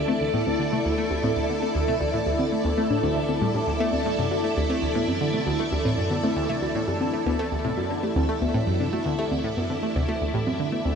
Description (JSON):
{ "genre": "ambient, sequencer-driven space music", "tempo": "117 BPM", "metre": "4/4", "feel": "straight", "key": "unclear", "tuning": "A4 = 442 Hz", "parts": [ { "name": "string machine, full ensemble", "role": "sustained chords", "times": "0.0-11.0 s", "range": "E4 to D5", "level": "-26 LUFS", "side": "equal", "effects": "phaser, ensemble chorus" }, { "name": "analog pluck", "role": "riff", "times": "0.0-10.9 s", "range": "D2 to A3", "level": "-26 LUFS", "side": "equal", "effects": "chorus, phaser, ping-pong delay" }, { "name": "soft round pluck", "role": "arpeggios", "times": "0.1-10.9 s", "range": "C3 to C5", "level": "-30 LUFS", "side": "moving between left 7 dB and right 1 dB", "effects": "chorus, auto-pan, ping-pong delay" } ], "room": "wet huge ambient reverb, RT60 8.1 s", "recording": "none", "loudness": "-22 LUFS", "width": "side -6 dB against mid", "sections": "0.0-11.0 A section", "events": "none", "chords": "0.0 Dsus2" }